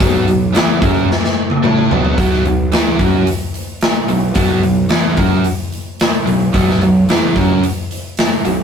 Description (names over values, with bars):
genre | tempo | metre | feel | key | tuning
blues rock power trio and southern rock | 110 BPM | 4/4 | straight | unclear | A4 = 444 Hz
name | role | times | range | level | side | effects
biting overdriven guitar | riff | 0.0-8.6 s | B2 to A4 | -15 LUFS | right 1 dB | none
fuzz picked electric bass | bass | 0.0-8.6 s | B1 to A2 | -19 LUFS | equal | overdrive
big rock drum kit | drums | 0.0-8.6 s | hi-hat, kick drum, snare drum, toms | -15 LUFS | left 1 dB | none
room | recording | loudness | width
moderate small room reverb, RT60 0.5 s | rough rehearsal-room recording, tube saturation | -12 LUFS | side -7 dB against mid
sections
0.0-2.2 A section; 2.2-8.6 B section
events
drum fill 1.1-2.2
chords
0.0 B5